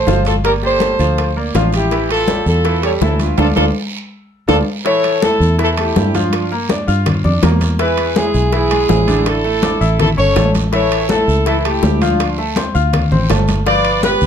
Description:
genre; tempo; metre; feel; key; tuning
latin, salsa; 163 BPM; 4/4; straight; unclear; A4 = 440 Hz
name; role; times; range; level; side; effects
warm horn section; melody; 0.0-14.3 s; D4 to D5; -16 LUFS; equal; none
bright grand piano; accompaniment; 0.0-14.3 s; D3 to F6; -20 LUFS; equal; none
fingered electric bass; bass; 0.0-14.3 s; G1 to G2; -17 LUFS; equal; none
bongos; percussion; 0.1-14.2 s; none; -22 LUFS; left 8 dB; none
congas; percussion; 0.1-14.3 s; none; -21 LUFS; left 2 dB; none
guiro; percussion; 0.1-14.3 s; none; -31 LUFS; right 7 dB; none
timbales; percussion; 0.1-14.2 s; none; -25 LUFS; right 7 dB; none
room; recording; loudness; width
light reverb; close, detailed microphones; -12 LUFS; side -8 dB against mid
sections
0.0-4.9 A section; 4.9-14.3 B section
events
band accent 3.4-4.9; drum fill 3.9-4.9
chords
0.4 Gm7; 1.9 A5; 3.4 Dm; 4.9 A; 6.3 Gm7; 7.8 E7; 9.3 Asus4; 10.0 A; 12.2 Dm7; 13.7 G7

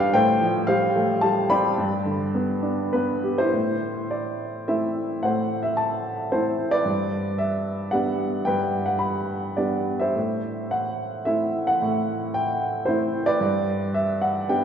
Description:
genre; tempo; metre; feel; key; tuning
classical, lyrical solo piano; 95-116 BPM; 3/4; rubato; A dorian from 3.5 s; A4 = 441 Hz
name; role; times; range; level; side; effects
clear upright piano; solo; 0.0-14.6 s; G2 to B5; -21 LUFS; equal; none
room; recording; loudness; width
wet church reverb, RT60 2.7 s; recorded in a church or concert hall, nothing above 7.9 kHz; -21 LUFS; side -8 dB against mid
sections
0.0-3.5 A section; 3.5-14.6 B section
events
none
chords
0.1 Fadd9/A; 1.8 G; 3.5 Am; 6.9 G; 10.2 Am; 13.4 G

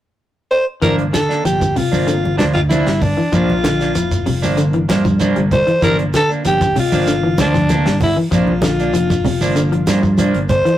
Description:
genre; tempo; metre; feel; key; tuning
afrobeat; 96 BPM; 4/4; straight; G dorian; A4 = 440 Hz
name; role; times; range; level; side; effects
raspy alto saxophone; melody; 0.5-10.8 s; D4 to C5; -18 LUFS; left 1 dB; none
tine electric piano; accompaniment; 0.8-10.4 s; C3 to F4; -27 LUFS; left 2 dB; overdrive
electric guitar at the edge of break-up; arpeggios; 0.8-10.8 s; C3 to G3; -20 LUFS; left 2 dB; none
electric guitar at the edge of break-up; stabs; 0.8-10.7 s; F3 to D4; -22 LUFS; right 3 dB; spring reverb
fingered electric bass; bass; 0.8-10.7 s; F1 to G2; -20 LUFS; right 1 dB; none
damped 70s drum kit; drums; 0.8-10.8 s; hi-hat, kick drum, snare drum; -24 LUFS; equal; none
shekere; percussion; 0.8-10.7 s; none; -30 LUFS; right 2 dB; none
congas; percussion; 1.1-10.7 s; none; -21 LUFS; right 1 dB; none
room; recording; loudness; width
light reverb; rough rehearsal-room recording, warm saturation; -13 LUFS; side -12 dB against mid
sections
0.8-10.8 A section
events
none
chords
0.0 N.C.; 0.8 Gm7

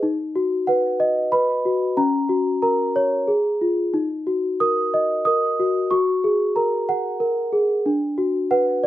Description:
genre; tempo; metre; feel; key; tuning
children's music, lullaby; 92 BPM; 3/4; straight; F# major; A4 = 440 Hz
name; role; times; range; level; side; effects
celesta; solo; 0.0-8.9 s; C#4 to D#6; -18 LUFS; equal; slapback echo
room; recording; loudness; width
little or no reverb; recorded outdoors, with no room sound; -18 LUFS; side -14 dB against mid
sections
0.0-8.9 A section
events
none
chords
0.0 B; 2.0 F#/C#; 3.3 Fmadd11; 3.9 D#m; 5.9 F#add9; 7.9 Bm

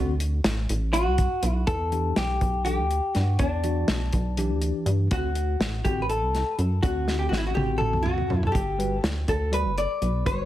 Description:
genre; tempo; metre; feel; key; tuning
progressive instrumental, band music in an uneven meter; 244 BPM (eighths); 7/8; straight; E minor; A4 = 440 Hz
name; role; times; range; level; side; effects
tine electric piano; accompaniment; 0.0-10.5 s; D3 to D5; -31 LUFS; equal; fast stereo tremolo
rubbery square bass; bass; 0.0-10.5 s; F#1 to G2; -26 LUFS; equal; none
warm soul drum kit; drums; 0.2-10.4 s; hi-hat, kick drum, snare drum, toms; -27 LUFS; equal; none
vintage hollow-body jazz guitar; melody; 0.9-10.5 s; D4 to D5; -27 LUFS; left 1 dB; digital delay
room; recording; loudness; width
light reverb; heavily compressed radio sound, multiband compression; -22 LUFS; side -13 dB against mid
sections
0.0-1.7 A section; 1.7-10.5 B section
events
drum fill 7.1-8.5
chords
0.0 D7; 1.7 Em7; 5.1 D7; 8.5 Gmaj7

